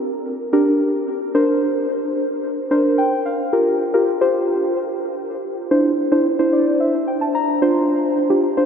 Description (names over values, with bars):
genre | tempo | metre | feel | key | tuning
pop | 110 BPM | 4/4 | straight | unclear | A4 = 440 Hz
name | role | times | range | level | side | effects
muted felt-like synth keys | solo | 0.5-8.7 s | D4 to C6 | -16 LUFS | equal | chorus, diffuse ambient delay
room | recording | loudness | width
wet huge ambient reverb, RT60 7.5 s | dreamy mix soaked in reverb, nothing above 10.8 kHz | -16 LUFS | side -7 dB against mid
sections
0.0-3.5 A section; 3.5-8.7 B section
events
synth keys fill 2.7-3.5, 6.3-7.9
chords
0.0 Gm; 1.3 Bbadd9; 3.5 Gm7; 5.7 Cadd9; 7.6 Dm7